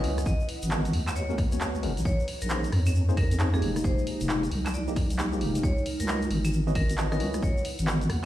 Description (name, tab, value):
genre	UK garage, two-step garage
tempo	134 BPM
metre	4/4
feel	swing 63% on 16ths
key	unclear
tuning	A4 = 440 Hz
part	vibraphone with hard mallets	melody	0.0-7.6 s	Ab4 to Eb5	-37 LUFS	equal	ping-pong delay
part	tine electric piano	stabs	0.0-8.0 s	F3 to Eb5	-34 LUFS	equal	medium stereo tremolo, ping-pong delay
part	deep soft wobble bass	bass	0.0-8.3 s	F1 to F2	-27 LUFS	equal	chorus
part	punchy analog drum machine	drums	0.0-8.2 s	claves, handclaps, hi-hat, rim click	-34 LUFS	right 1 dB	none
part	ethereal airy pad	texture	0.0-8.3 s	Ab3 to Bb5	-36 LUFS	equal	ensemble chorus, built-in reverb, sidechain pumping
part	tube shaker	percussion	0.2-8.1 s	none	-43 LUFS	left 3 dB	none
part	electronic kick drum	drums	0.3-7.5 s	none	-27 LUFS	equal	none
room	moderate small room reverb, RT60 0.5 s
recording	played on a big sound system in a bare room, stone room reverb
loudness	-24 LUFS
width	side -13 dB against mid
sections	0.0-8.3 A section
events	none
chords	0.3 Abm11; 2.1 Bbm11; 3.6 Fm11; 5.6 Dbm11; 7.4 Abm11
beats	| 0.26 0.71 1.16 1.60 | 2.05 2.50 2.95 3.40 | 3.84 4.29 4.74 5.19 | 5.63 6.08 6.53 6.98 | 7.43 7.87